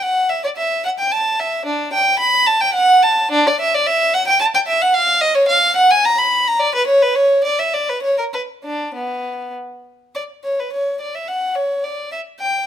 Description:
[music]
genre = classical, baroque-style suite movement for unaccompanied violin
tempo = 97-115 BPM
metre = 3/4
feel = rubato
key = B minor from 3.3 s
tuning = A4 = 439 Hz
[part]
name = rich violin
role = solo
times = 0.0-12.7 s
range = B3 to B5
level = -14 LUFS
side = equal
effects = none
[sound]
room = moderate stone room reverb, RT60 1.1 s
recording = none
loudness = -14 LUFS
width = side -10 dB against mid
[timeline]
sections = 0.0-10.1 A section; 10.1-12.7 A section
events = none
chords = none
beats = | 0.02 0.56 1.11 | 1.66 2.19 2.73 | 3.30 3.86 4.40 | 4.94 5.48 6.03 | 6.59 7.15 7.73 | 8.33 8.95 9.55 | 10.14 10.72 11.29 | 11.84 12.40

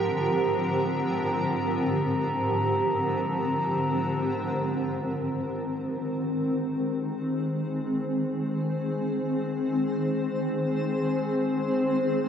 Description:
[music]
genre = ambient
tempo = free time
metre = none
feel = none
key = Ab lydian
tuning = A4 = 440 Hz
[part]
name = granular cloud pad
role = sustained chords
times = 0.0-12.3 s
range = Ab2 to C5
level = -25 LUFS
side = equal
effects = built-in reverb
[part]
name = glass harmonica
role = texture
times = 0.0-4.2 s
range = Bb5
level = -32 LUFS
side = left 2 dB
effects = none
[sound]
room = wet huge ambient reverb, RT60 7.8 s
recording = nothing above 10.3 kHz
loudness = -25 LUFS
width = side -8 dB against mid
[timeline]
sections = 0.0-4.2 A section; 4.2-12.3 B section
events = filter sweep on ambient pad 0.0-4.2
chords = 0.0 Gm/Ab; 4.2 Ab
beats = free time

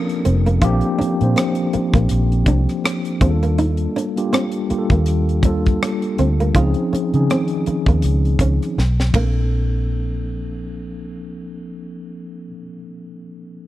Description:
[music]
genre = R&B, neo-soul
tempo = 81 BPM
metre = 4/4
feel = swing 57% on 16ths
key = Bb major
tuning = A4 = 441 Hz
[part]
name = mellow tine electric piano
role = accompaniment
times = 0.0-13.7 s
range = Eb3 to C5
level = -22 LUFS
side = left 1 dB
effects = medium stereo tremolo
[part]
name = tight funk drum kit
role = drums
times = 0.1-9.3 s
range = hi-hat, kick drum, ride cymbal, rim click, snare drum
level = -20 LUFS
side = equal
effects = none
[part]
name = flamenco guitar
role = second line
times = 0.2-9.6 s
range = Bb3 to F4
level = -23 LUFS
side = right 3 dB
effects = none
[part]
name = vintage muted fingered electric bass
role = bass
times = 0.3-12.5 s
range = F1 to Db3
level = -18 LUFS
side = equal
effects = none
[sound]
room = small room ambience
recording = dry, close 1970s-style studio recording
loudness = -16 LUFS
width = side -14 dB against mid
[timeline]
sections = 0.0-9.5 A section; 9.5-12.5 B section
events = drum fill 8.8-9.5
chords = 0.0 Bbmaj9; 3.2 Ebmaj9#11; 6.5 Dbmaj9; 8.8 N.C.; 9.1 Bbmaj9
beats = | 0.62 1.36 2.10 2.84 | 3.58 4.32 5.06 5.80 | 6.54 7.28 8.03 8.77 | 9.51 10.25 10.99 11.73

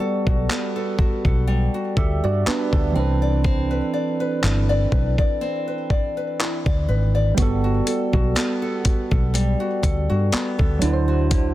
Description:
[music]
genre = contemporary R&B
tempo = 61 BPM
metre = 4/4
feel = swing 54% on 16ths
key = G major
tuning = A4 = 442 Hz
[part]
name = soft electric-piano-like synth keys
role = accompaniment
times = 0.0-11.5 s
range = E3 to E5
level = -26 LUFS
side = right 5 dB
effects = chorus
[part]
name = nylon-string guitar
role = arpeggios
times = 0.0-11.5 s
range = D3 to D5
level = -26 LUFS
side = left 3 dB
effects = digital delay
[part]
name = vintage muted fingered electric bass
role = bass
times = 0.3-11.5 s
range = G1 to G2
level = -21 LUFS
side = equal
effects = none
[part]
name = dusty soul sampler-style drum kit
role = drums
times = 0.3-11.5 s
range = handclaps, hi-hat, kick drum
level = -22 LUFS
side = equal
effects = none
[sound]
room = little or no reverb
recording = dense, heavily limited modern master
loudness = -18 LUFS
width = side -15 dB against mid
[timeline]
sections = 0.0-11.5 A section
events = none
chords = 0.0 Gmaj9; 3.0 Cmaj9; 7.4 Gmaj9; 10.8 D9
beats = 0.49 1.48 2.46 | 3.44 4.43 5.41 6.39 | 7.38 8.36 9.35 10.33 | 11.31

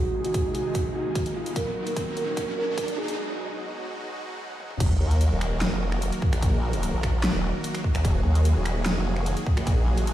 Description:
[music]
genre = heavy wobble dubstep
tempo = 148 BPM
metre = 4/4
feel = half-time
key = Eb minor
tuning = A4 = 440 Hz
[part]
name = felt-muted upright piano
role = melody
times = 0.0-3.2 s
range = F4 to Bb4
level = -29 LUFS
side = right 2 dB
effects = dub echo
[part]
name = supersaw chords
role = sustained chords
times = 0.0-10.1 s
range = Bb2 to Bb4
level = -31 LUFS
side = equal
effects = sidechain pumping, low-pass filter
[part]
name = riser and sub drop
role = sound effects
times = 0.7-6.4 s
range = none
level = -32 LUFS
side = equal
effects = none
[part]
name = dubstep drum kit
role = drums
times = 0.2-10.1 s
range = crash cymbal, finger snaps, hi-hat, snare drum, toms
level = -32 LUFS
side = equal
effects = none
[part]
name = electronic kick drum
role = drums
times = 0.3-9.8 s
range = none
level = -26 LUFS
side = equal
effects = none
[part]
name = formant-sweep wobble bass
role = bass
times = 4.8-10.1 s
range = Eb1 to Eb2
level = -24 LUFS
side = equal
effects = chorus, overdrive
[sound]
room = light reverb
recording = played on a big sound system in a bare room, stone room reverb, high-pass filter, lossy compression artefacts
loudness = -23 LUFS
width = side -13 dB against mid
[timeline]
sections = 0.0-4.8 A section; 4.8-10.1 B section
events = build-up 0.0-4.8; riser 0.7-3.2; filter sweep on supersaw synth 0.0-4.8; filter sweep 0.0-4.8; drum fill 1.6-3.2, 4.6; break 3.2-4.8; drop 4.8-10.1; impact 4.8-6.4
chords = 0.0 Ab; 1.6 Ebm; 3.2 Abm7; 4.8 Ebm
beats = 0.34 0.75 1.16 | 1.56 1.97 2.37 2.78 | 3.18 3.59 3.99 4.40 | 4.80 5.21 5.61 6.02 | 6.42 6.83 7.24 7.64 | 8.05 8.45 8.86 9.26 | 9.67 10.07

